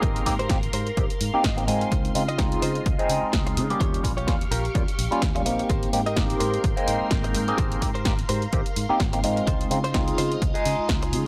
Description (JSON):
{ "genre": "filtered disco house", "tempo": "127 BPM", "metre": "4/4", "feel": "swing 56% on 16ths", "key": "Ab major", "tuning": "A4 = 440 Hz", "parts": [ { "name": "barky tine electric piano", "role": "accompaniment", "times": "0.0-11.2 s", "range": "G3 to Ab4", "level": "-28 LUFS", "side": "equal", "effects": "phaser, sidechain pumping, low-pass filter" }, { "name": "phased string machine", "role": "sustained chords", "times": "0.0-11.3 s", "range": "F4 to Db6", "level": "-37 LUFS", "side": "equal", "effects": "ensemble chorus, phaser, sidechain pumping, low-pass filter" }, { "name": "direct-recorded clean electric guitar", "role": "riff", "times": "0.0-11.2 s", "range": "Eb4 to Ab5", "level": "-34 LUFS", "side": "equal", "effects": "subtle chorus, sidechain pumping, low-pass filter" }, { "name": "fingered electric bass", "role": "bass", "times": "0.0-11.3 s", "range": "Ab1 to Db3", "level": "-31 LUFS", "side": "equal", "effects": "transformer saturation, sidechain pumping, low-pass filter" }, { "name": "electronic kick drum", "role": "drums", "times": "0.0-11.0 s", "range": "none", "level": "-28 LUFS", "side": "equal", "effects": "overdrive" }, { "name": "punchy analog drum machine", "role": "drums", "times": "0.0-11.2 s", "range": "hi-hat, snare drum", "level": "-33 LUFS", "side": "equal", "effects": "overdrive, sidechain pumping on hats" } ], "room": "digital ambience", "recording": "dry, gritty hardware recording, transformer saturation", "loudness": "-24 LUFS", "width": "mono", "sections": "0.0-11.3 A section", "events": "clean electric guitar fill 1.2-1.9", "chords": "0.0 Abmaj9; 1.9 Dbmaj9; 3.8 Eb9; 5.7 Abmaj9; 9.5 Dbmaj9" }